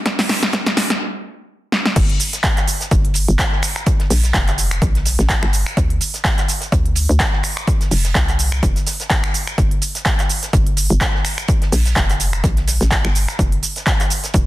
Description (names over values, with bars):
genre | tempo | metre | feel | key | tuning
bass house | 126 BPM | 4/4 | swing 56% on 16ths | G minor | A4 = 441 Hz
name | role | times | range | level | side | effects
big-room dance drum kit | drums | 0.1-14.5 s | cabasa, crash cymbal, finger snaps, handclaps, hi-hat, snare drum | -20 LUFS | right 1 dB | overdrive
compact cocktail drum kit | drums | 0.1-14.5 s | hi-hat, snare drum | -32 LUFS | right 3 dB | high-pass filter on hats, soft clipping on snare, high-pass filter on snare, high-pass filter on room
electronic kick drum | drums | 0.1-14.4 s | none | -18 LUFS | equal | overdrive, high-pass filter on kick, high-pass filter on room
hollow knocking FM bass | bass | 2.0-14.5 s | F1 to D2 | -17 LUFS | equal | tube saturation, sidechain pumping
room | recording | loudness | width
little or no reverb | dense, heavily limited modern master | -15 LUFS | side -16 dB against mid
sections
0.0-2.0 A section; 2.0-14.5 B section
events
build-up 0.0-2.0; drum fill 0.0-1.0, 1.7; stop 1.0-2.0; drop 2.0-14.5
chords
none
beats
| 0.06 0.53 1.01 1.49 | 1.96 2.44 2.91 3.39 | 3.87 4.34 4.82 5.29 | 5.77 6.25 6.72 7.20 | 7.68 8.15 8.63 9.10 | 9.58 10.06 10.53 11.01 | 11.48 11.96 12.44 12.91 | 13.39 13.87 14.34